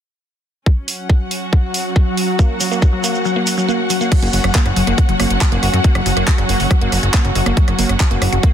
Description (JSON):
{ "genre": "psychedelic trance", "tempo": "139 BPM", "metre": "4/4", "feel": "straight", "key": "F# major", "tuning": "A4 = 440 Hz", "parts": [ { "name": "evolving wavetable pad", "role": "sustained chords", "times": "1.0-8.5 s", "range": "F#3 to F#4", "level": "-23 LUFS", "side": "right 1 dB", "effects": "chorus, built-in reverb, sidechain pumping" }, { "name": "electronic kick drum", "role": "drums", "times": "0.7-8.5 s", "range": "none", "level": "-13 LUFS", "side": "equal", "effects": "overdrive" }, { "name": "warm studio string section", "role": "texture", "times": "0.7-8.5 s", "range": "C#4 to F#5", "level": "-23 LUFS", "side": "left 1 dB", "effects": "sidechain pumping" }, { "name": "garage drum kit", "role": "drums", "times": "0.9-8.5 s", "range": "crash cymbal, handclaps, hi-hat, rim click", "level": "-22 LUFS", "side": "right 2 dB", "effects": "overdrive" }, { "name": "woody wave-folded pluck", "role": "riff", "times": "2.4-8.5 s", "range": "F#3 to A#3", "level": "-21 LUFS", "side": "moving between left 3 dB and right 5 dB", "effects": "chorus, auto-pan, sidechain pumping, tape echo" }, { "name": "shekere", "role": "percussion", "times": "2.4-4.1 s", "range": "none", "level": "-25 LUFS", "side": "right 4 dB", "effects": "none" }, { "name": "fat analog bass", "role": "bass", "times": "4.2-8.4 s", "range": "F#1 to F#2", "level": "-18 LUFS", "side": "equal", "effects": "none" } ], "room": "little or no reverb", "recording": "dense, heavily limited modern master", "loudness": "-13 LUFS", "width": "side -9 dB against mid", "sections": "0.7-4.1 A section; 4.1-8.5 B section", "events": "kick drops out 3.3-4.1", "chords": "0.7 F#5", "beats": "| 0.66 1.09 1.53 1.96 | 2.39 2.82 3.25 3.69 | 4.12 4.55 4.98 5.41 | 5.84 6.28 6.71 7.14 | 7.57 8.00 8.43" }